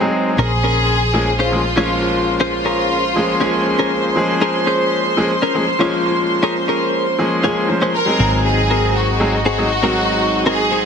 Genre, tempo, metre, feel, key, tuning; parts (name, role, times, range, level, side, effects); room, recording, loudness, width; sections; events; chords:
nu-disco; 119 BPM; 4/4; straight; Bb minor; A4 = 440 Hz
bright baby grand piano; accompaniment; 0.0-10.9 s; F3 to C5; -19 LUFS; equal; digital delay
warm studio string section; sustained chords; 0.0-10.9 s; C4 to C6; -22 LUFS; right 1 dB
direct-recorded clean electric guitar; riff; 0.0-10.9 s; C4 to Db5; -21 LUFS; left 2 dB; wide subtle chorus, digital delay
hollow-body short-scale fingered electric bass; bass; 0.0-10.9 s; Ab1 to Bb1; -21 LUFS; equal
warm symphonic violin section; melody; 0.4-4.1, 7.9-10.9 s; F4 to Bb4; -19 LUFS; equal; dub echo
moderate lush hall reverb, RT60 2.6 s; dense, heavily limited modern master, lossy compression artefacts; -14 LUFS; side -6 dB against mid
0.0-10.9 A section
0.4 Bbm7; 8.2 Ab7